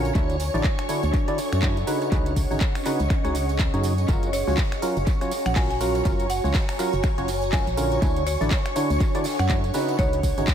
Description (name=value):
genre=piano house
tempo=122 BPM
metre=4/4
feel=swing 59% on 16ths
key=F# major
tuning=A4 = 439 Hz
part: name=string machine, violins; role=sustained chords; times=0.0-10.5 s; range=C#5 to C#6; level=-32 LUFS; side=equal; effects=ensemble chorus, sidechain pumping
part: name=percussive organ stab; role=riff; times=0.0-10.5 s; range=C#3 to D5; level=-27 LUFS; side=right 1 dB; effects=analog chorus, sidechain pumping, analog delay
part: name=organ-like FM bass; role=bass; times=0.0-10.5 s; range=F#1 to F#2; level=-26 LUFS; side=equal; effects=sidechain pumping
part: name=tambourine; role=percussion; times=0.0-10.5 s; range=none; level=-43 LUFS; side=right 13 dB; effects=none
part: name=ethereal airy pad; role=texture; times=0.0-10.5 s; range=C#4 to A#5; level=-31 LUFS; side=right 2 dB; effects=ensemble chorus, built-in reverb, sidechain pumping
part: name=house drum kit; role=drums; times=0.1-10.5 s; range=finger snaps, handclaps, hi-hat, tambourine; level=-33 LUFS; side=right 1 dB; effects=small room reverb, analog delay
part: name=electronic kick drum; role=drums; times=0.2-10.5 s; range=none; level=-23 LUFS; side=equal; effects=small room reverb
part: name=gated 80s drum kit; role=drums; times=4.1-10.5 s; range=hi-hat, snare drum, tambourine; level=-42 LUFS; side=right 1 dB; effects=none
part: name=buzzing marimba with hard mallets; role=melody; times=4.3-10.2 s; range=C#5 to G#5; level=-32 LUFS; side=right 1 dB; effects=analog delay
room=light reverb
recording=echo-heavy mix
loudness=-21 LUFS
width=side -9 dB against mid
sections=0.0-10.5 A section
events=none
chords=0.2 Dmaj9; 1.9 C#9sus4; 4.1 F#maj7; 8.0 Dmaj9; 9.7 C#9sus4